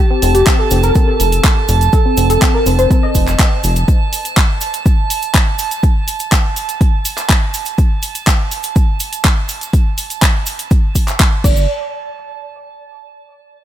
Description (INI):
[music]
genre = progressive house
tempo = 123 BPM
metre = 4/4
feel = straight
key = unclear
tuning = A4 = 435 Hz
[part]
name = soft round pluck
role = arpeggios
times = 0.0-3.8, 11.4-11.6 s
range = C4 to Eb5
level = -17 LUFS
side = left 1 dB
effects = ensemble chorus, sidechain pumping, dub echo
[part]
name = drifting glass-harmonics texture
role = texture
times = 0.0-11.7 s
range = A5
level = -23 LUFS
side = right 9 dB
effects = chorus, built-in reverb, sidechain pumping
[part]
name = fat analog bass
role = bass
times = 0.2-3.8, 11.4-11.7 s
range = F1 to G1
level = -14 LUFS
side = equal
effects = sidechain pumping
[part]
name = pop drum kit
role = drums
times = 0.2-11.5 s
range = crash cymbal, handclaps, hi-hat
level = -19 LUFS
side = equal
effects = none
[part]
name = cabasa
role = percussion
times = 0.2-11.7 s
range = none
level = -25 LUFS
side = right 4 dB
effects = none
[part]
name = electronic kick drum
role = drums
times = 0.5-11.5 s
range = none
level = -12 LUFS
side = equal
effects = none
[sound]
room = little or no reverb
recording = none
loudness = -11 LUFS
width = side -12 dB against mid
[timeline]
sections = 0.0-11.7 A section; 11.7-13.6 B section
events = none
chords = 0.0 F; 3.9 N.C.; 11.4 G5; 11.7 N.C.